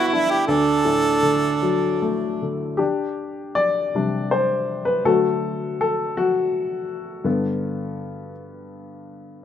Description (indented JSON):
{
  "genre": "celtic folk, Celtic slow air",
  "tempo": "73-84 BPM",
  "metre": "3/4",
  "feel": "rubato",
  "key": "D mixolydian",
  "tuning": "A4 = 440 Hz",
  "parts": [
    { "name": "warm harmonica", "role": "melody", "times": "0.0-2.4 s", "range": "E4 to A4", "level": "-22 LUFS", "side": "right 2 dB", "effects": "none" },
    { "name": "dark fiddle", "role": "second line", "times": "0.0-2.4 s", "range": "D4 to E4", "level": "-22 LUFS", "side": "right 4 dB", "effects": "none" },
    { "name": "warm upright piano", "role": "accompaniment", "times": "0.0-9.4 s", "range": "D2 to D5", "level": "-22 LUFS", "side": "left 3 dB", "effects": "none" }
  ],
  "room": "small room ambience",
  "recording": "rough home demo mix",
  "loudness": "-19 LUFS",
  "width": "side -9 dB against mid",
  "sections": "0.0-2.8 A section; 2.8-9.4 B section",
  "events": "upright piano solo 2.8-9.4",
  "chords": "0.5 D; 2.8 Csus2; 5.1 D; 7.2 G"
}